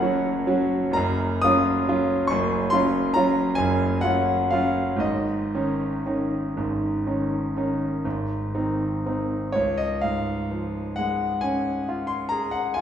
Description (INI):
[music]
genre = classical, romantic nocturne for solo piano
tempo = 38-48 BPM (dotted quarters)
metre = 9/8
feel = rubato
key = Db major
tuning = A4 = 438 Hz
[part]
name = bright concert grand piano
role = solo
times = 0.0-12.8 s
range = F#1 to Eb6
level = -22 LUFS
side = equal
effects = none
[sound]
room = wet recital hall reverb, RT60 1.6 s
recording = heard from further back in the room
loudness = -22 LUFS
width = side -9 dB against mid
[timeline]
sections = 0.0-9.6 A section; 9.6-12.8 B section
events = none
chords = 0.0 F#5; 1.0 Gb5; 5.0 Absus4; 8.0 Ab; 9.6 Db